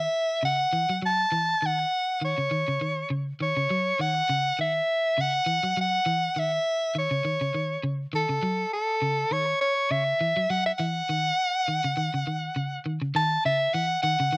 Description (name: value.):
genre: afrobeat.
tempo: 102 BPM.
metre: 4/4.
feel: swing 55% on 16ths.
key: F# dorian.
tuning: A4 = 440 Hz.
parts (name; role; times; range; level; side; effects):
bright soprano saxophone; melody; 0.0-14.4 s; A4 to A5; -27 LUFS; equal; slapback echo.
electric guitar at the edge of break-up; arpeggios; 0.0-14.4 s; C#3 to F#3; -32 LUFS; equal; none.
room: light reverb.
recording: dry, close 1970s-style studio recording.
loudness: -26 LUFS.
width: mono.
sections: 0.0-13.1 A section; 13.1-14.4 B section.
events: none.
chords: 0.0 F#7(no3); 13.1 F#m7.